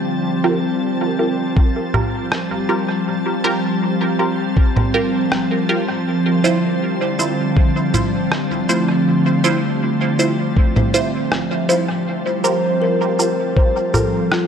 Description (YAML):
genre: ambient dub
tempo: 80 BPM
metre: 4/4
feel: straight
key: unclear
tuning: A4 = 439 Hz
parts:
  - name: soft additive organ-like pad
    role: sustained chords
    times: 0.0-14.5 s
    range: D3 to A5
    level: -19 LUFS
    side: equal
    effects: ensemble chorus, built-in reverb
  - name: filtered dub chord stab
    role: stabs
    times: 0.4-14.1 s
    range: E4 to C5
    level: -22 LUFS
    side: right 2 dB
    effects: phaser, cassette tape, dub echo
  - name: electronic kick drum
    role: drums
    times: 1.6-13.7 s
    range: none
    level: -14 LUFS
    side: equal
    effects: none
  - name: electronic congas, rim click and cabasa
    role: drums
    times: 1.9-14.5 s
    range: none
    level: -22 LUFS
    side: right 1 dB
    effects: dub echo
  - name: kalimba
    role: arpeggios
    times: 7.2-14.5 s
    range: G3 to C5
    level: -22 LUFS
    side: left 2 dB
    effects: tape echo
room: moderate echo chamber reverb, RT60 2.3 s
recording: none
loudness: -15 LUFS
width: side -7 dB against mid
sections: 0.0-14.5 A section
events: none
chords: 0.1 Gm7; 6.1 Dm9; 12.1 Gm7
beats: | 0.07 0.81 1.56 2.31 | 3.06 3.81 4.57 5.32 | 6.07 6.82 7.57 8.31 | 9.06 9.81 10.56 11.31 | 12.06 12.81 13.56 14.31